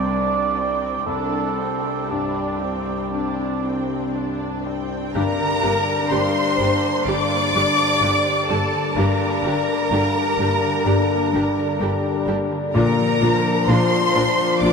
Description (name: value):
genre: cinematic, emotional film score for orchestra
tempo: 58-65 BPM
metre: 4/4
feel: rubato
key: G minor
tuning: A4 = 440 Hz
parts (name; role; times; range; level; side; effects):
- warm symphonic violin section; melody; 0.0-14.7 s; D5 to D6; -24 LUFS; equal; none
- dark cor anglais; second line; 0.0-4.2 s; G4 to D5; -26 LUFS; right 6 dB; none
- warm symphonic violin section; second line; 0.0-14.7 s; C4 to D5; -26 LUFS; left 1 dB; none
- clear grand piano; accompaniment; 0.0-14.7 s; C2 to D4; -25 LUFS; left 4 dB; none
- rich studio viola section; accompaniment; 0.0-14.7 s; C4 to G4; -30 LUFS; right 3 dB; none
- concert harp; arpeggios; 0.0-14.7 s; G2 to D5; -28 LUFS; left 1 dB; none
- warm symphonic cello section; bass; 0.0-14.7 s; C2 to Bb2; -28 LUFS; equal; none
- warm French horn section; sustained chords; 5.2-14.7 s; F3 to D4; -26 LUFS; right 1 dB; none
- warm symphonic double bass section; bass; 5.2-14.7 s; G1 to Bb1; -28 LUFS; equal; none
room: wet huge ambient reverb, RT60 8.9 s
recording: in a vast, echoing space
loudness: -18 LUFS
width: side -5 dB against mid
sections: 0.0-5.2 A section; 5.2-14.7 A section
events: none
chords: 0.0 Csus2; 5.2 Gm; 12.8 Bb